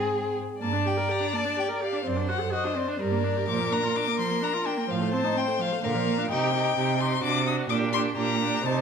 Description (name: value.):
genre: quick classical-period movement for string quartet.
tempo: 127 BPM.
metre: 3/4.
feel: rubato.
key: G minor.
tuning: A4 = 440 Hz.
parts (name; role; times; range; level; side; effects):
clear violin; melody; 0.0-8.8 s; C4 to Eb6; -29 LUFS; left 8 dB; none.
rich violin; second line; 0.0-8.8 s; F#4 to D5; -31 LUFS; left 2 dB; none.
rich viola; accompaniment; 0.0-8.8 s; D3 to Bb4; -29 LUFS; right 2 dB; none.
rich cello; bass; 0.0-8.8 s; F#2 to C3; -30 LUFS; right 6 dB; none.
room: wet recital hall reverb, RT60 1.3 s.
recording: dark, warm production.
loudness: -24 LUFS.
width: side -6 dB against mid.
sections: 0.6-8.8 A section.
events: none.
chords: 0.0 Ab; 0.6 Gm; 2.1 D7/F#; 3.0 Gm; 3.5 Bb; 4.9 F7/A; 5.8 Bb; 6.3 Cm; 7.2 D7/C; 7.7 Gm/Bb.